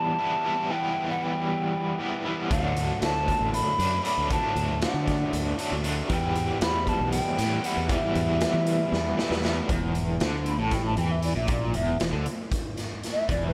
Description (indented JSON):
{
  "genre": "psychedelic rock",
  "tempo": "234 BPM (eighths)",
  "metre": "7/8",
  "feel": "straight",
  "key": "E minor",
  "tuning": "A4 = 440 Hz",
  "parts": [
    { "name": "mellow hollow jazz flute", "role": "melody", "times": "0.0-13.5 s", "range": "B4 to B5", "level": "-31 LUFS", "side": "equal", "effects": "slapback echo" },
    { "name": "crunchy overdriven guitar", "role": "riff", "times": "0.0-13.5 s", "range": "E2 to E4", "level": "-31 LUFS", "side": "equal", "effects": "tremolo" },
    { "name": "fingered electric bass", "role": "bass", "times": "2.5-13.5 s", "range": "E1 to E3", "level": "-32 LUFS", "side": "equal", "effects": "none" },
    { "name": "raw garage drum kit", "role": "drums", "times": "2.5-13.4 s", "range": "hi-hat, kick drum, snare drum", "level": "-32 LUFS", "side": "equal", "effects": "none" }
  ],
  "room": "light reverb, small room ambience",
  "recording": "none",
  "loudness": "-26 LUFS",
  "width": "mono",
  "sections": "0.0-9.7 A section; 9.7-13.5 B section",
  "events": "drum fill 8.9-9.7; flute solo 9.7-13.5",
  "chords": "0.0 Em; 2.5 D; 6.1 Em; 9.7 N.C."
}